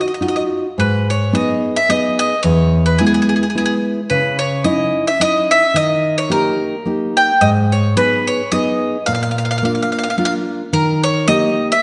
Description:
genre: italian folk, Italian serenade.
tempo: 109 BPM.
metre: 3/4.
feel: swing 55% on 8ths.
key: G# harmonic minor.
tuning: A4 = 440 Hz.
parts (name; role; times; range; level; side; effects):
bowl-back mandolin; melody; 0.0-11.8 s; G#4 to G5; -19 LUFS; equal; none.
nylon-string guitar; accompaniment; 0.0-11.7 s; E2 to G#4; -19 LUFS; equal; none.
room: wet scoring stage reverb, RT60 1.7 s.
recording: nothing above 10.4 kHz.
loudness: -16 LUFS.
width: mono.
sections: 0.8-11.8 A section.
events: none.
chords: 0.0 Ebmadd9; 0.8 G#m; 2.4 E; 4.1 C#madd9; 5.7 D#; 7.4 G#m; 9.1 A#; 10.7 D#.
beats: 0.21 | 0.78 1.33 1.89 | 2.44 3.00 3.55 | 4.10 4.65 5.20 | 5.75 6.30 6.86 | 7.41 7.97 8.52 | 9.07 9.62 10.18 | 10.73 11.28.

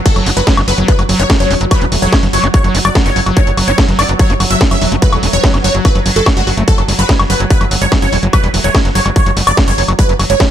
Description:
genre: psychedelic trance.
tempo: 145 BPM.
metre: 4/4.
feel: straight.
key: unclear.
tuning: A4 = 441 Hz.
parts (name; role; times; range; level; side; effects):
bubbling stepped-filter texture; sustained chords; 0.0-10.5 s; F#3; -22 LUFS; right 4 dB; chorus, built-in reverb, sidechain pumping.
supersaw stab; melody; 0.1-10.4 s; F#4 to E5; -17 LUFS; right 1 dB; phaser, sidechain pumping, dub echo.
screaming distorted acid line; riff; 0.1-10.4 s; F#3 to F#4; -20 LUFS; equal; distortion, chorus, auto-pan, cassette tape, sidechain pumping, dub echo.
electronic kick drum; drums; 0.1-10.5 s; none; -12 LUFS; equal; distortion.
techno drum kit; drums; 0.1-10.5 s; crash cymbal, hi-hat, snare drum, woodblock; -17 LUFS; left 1 dB; none.
tight sequencer bass; bass; 0.2-10.4 s; E1 to F#1; -16 LUFS; equal; none.
formant-sweep wobble bass; second line; 0.7-9.1 s; F#3 to C#4; -29 LUFS; right 4 dB; none.
room: digital ambience.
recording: none.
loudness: -9 LUFS.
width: side -10 dB against mid.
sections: 0.0-10.5 A section.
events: none.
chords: 0.0 Esus2.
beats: | 0.06 0.47 0.88 1.30 | 1.71 2.13 2.54 2.95 | 3.37 3.78 4.19 4.61 | 5.02 5.44 5.85 6.26 | 6.68 7.09 7.50 7.92 | 8.33 8.75 9.16 9.57 | 9.99 10.40.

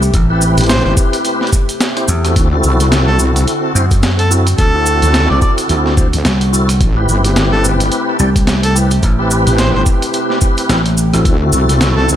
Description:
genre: glitch hop.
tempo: 108 BPM.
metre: 4/4.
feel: swing 58% on 16ths.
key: A dorian.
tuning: A4 = 441 Hz.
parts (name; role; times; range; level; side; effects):
warbly tape-like pad; sustained chords; 0.0-12.2 s; C3 to G4; -22 LUFS; equal; chorus, built-in reverb, sidechain pumping.
tonewheel organ; stabs; 0.0-12.2 s; C4 to D5; -17 LUFS; left 1 dB; overdrive, chorus vibrato, slow rotary speaker, sidechain pumping, ping-pong delay.
vintage slap bass; bass; 0.0-11.2 s; A1 to F#2; -14 LUFS; equal; none.
cabasa; percussion; 0.0-12.2 s; none; -22 LUFS; right 2 dB; none.
boom bap sampler-style drum kit; drums; 0.1-11.9 s; hi-hat, rim click, snare drum; -19 LUFS; equal; none.
electronic kick drum; drums; 0.1-11.4 s; none; -13 LUFS; equal; none.
wobble bass; bass; 0.6-12.2 s; G1 to D2; -13 LUFS; equal; chorus.
mellow harmonica; melody; 0.7-12.1 s; A4 to D5; -21 LUFS; equal; ping-pong delay.
room: digital ambience.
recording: none.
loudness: -10 LUFS.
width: side -11 dB against mid.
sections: 0.0-12.2 A section.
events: none.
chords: 0.0 Am7; 2.4 D7; 6.8 Am7; 11.3 D7.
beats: | 0.14 0.70 1.25 1.81 | 2.36 2.92 3.47 4.03 | 4.58 5.14 5.70 6.25 | 6.81 7.36 7.92 8.47 | 9.03 9.59 10.14 10.70 | 11.25 11.81.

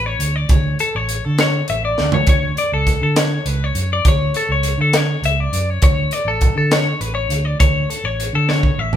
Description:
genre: math rock and midwest emo.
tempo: 68 BPM (dotted quarters).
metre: 6/8.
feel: straight.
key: unclear.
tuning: A4 = 441 Hz.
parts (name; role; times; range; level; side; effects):
twelve-string electric guitar; arpeggios; 0.0-9.0 s; A4 to E5; -20 LUFS; left 4 dB; none.
fingered electric bass; bass; 0.0-9.0 s; A1 to D3; -20 LUFS; right 1 dB; none.
crisp fusion drum kit; drums; 0.2-9.0 s; hi-hat, kick drum, snare drum, toms; -18 LUFS; right 1 dB; none.
room: moderate large studio reverb, RT60 0.9 s.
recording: band playing live in one room.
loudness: -15 LUFS.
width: side -10 dB against mid.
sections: 0.0-9.0 A section.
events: drum fill 2.0, 8.5-9.0.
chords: 0.0 Bm9 (rootless); 2.3 Dmaj7; 5.8 Bm9 (rootless).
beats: | 0.50 1.39 | 2.28 3.17 | 4.06 4.95 | 5.83 6.72 | 7.61 8.50.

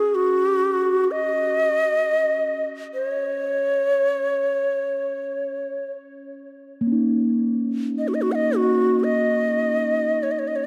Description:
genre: world meditative, free-time meditation music.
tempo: free time.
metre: none.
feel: none.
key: unclear.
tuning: A4 = 441 Hz.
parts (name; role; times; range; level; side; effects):
breathy mellow Native American-style cedar flute; melody; 0.0-10.7 s; F#4 to F#5; -23 LUFS; equal; diffuse ambient delay.
quartz singing bowl; texture; 0.0-10.7 s; A#3 to D#4; -29 LUFS; equal; none.
room: wet huge ambient reverb, RT60 4.6 s.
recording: none.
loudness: -22 LUFS.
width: mono.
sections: 0.0-10.7 A section.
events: none.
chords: none.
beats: free time.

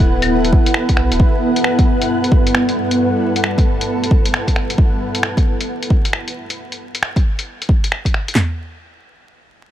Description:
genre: future garage.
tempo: 134 BPM.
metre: 4/4.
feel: swing 64% on 16ths.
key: unclear.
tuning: A4 = 443 Hz.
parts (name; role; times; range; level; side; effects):
granular cloud pad; sustained chords; 0.0-4.8 s; G2 to F#5; -18 LUFS; equal; built-in reverb, sidechain pumping.
dark detuned saw bass; bass; 0.0-1.2 s; D1 to B1; -20 LUFS; equal; sidechain pumping.
deep house drum kit; drums; 0.0-8.5 s; handclaps, kick drum, snare drum, toms; -14 LUFS; equal; overdrive, small room ambience.
lo-fi sampler-style drum kit; drums; 0.0-8.3 s; claves, finger snaps, hi-hat; -21 LUFS; left 1 dB; small room ambience.
room: light reverb, digital ambience.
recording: vinyl crackle.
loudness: -14 LUFS.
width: side -12 dB against mid.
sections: 0.0-8.4 A section; 8.4-9.7 B section.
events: none.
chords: 0.0 D6; 1.2 G6; 4.8 N.C..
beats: 0.30 0.75 | 1.20 1.64 2.09 2.54 | 2.99 3.44 3.88 4.33 | 4.78 5.23 5.67 6.12 | 6.57 7.02 7.46 7.91 | 8.36.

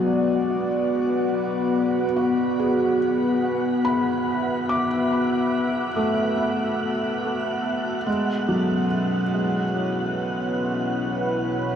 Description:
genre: ambient.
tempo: 71 BPM.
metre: 3/4.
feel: straight.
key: B dorian.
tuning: A4 = 439 Hz.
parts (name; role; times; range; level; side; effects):
warm analog pad; sustained chords; 0.0-11.8 s; B2 to E5; -24 LUFS; left 1 dB; chorus.
felt-muted upright piano; arpeggios; 0.0-11.8 s; F#3 to D6; -26 LUFS; right 1 dB; diffuse ambient delay.
bowed-like drone; drone; 0.0-11.8 s; B3 to F#4; -30 LUFS; left 1 dB; built-in reverb.
wind-like tuned noise texture; texture; 0.0-11.8 s; F#5; -31 LUFS; right 2 dB; built-in reverb.
room: wet shimmer reverb, RT60 8.2 s.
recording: dark, warm production.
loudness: -21 LUFS.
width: side -8 dB against mid.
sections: 0.0-11.8 A section.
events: fade-out on synth drone 0.0-11.8.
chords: 0.0 Bm7; 8.1 Amaj7/B.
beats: | 0.47 1.31 2.16 | 3.00 3.85 4.69 | 5.54 6.38 7.23 | 8.07 8.92 9.76 | 10.61 11.45.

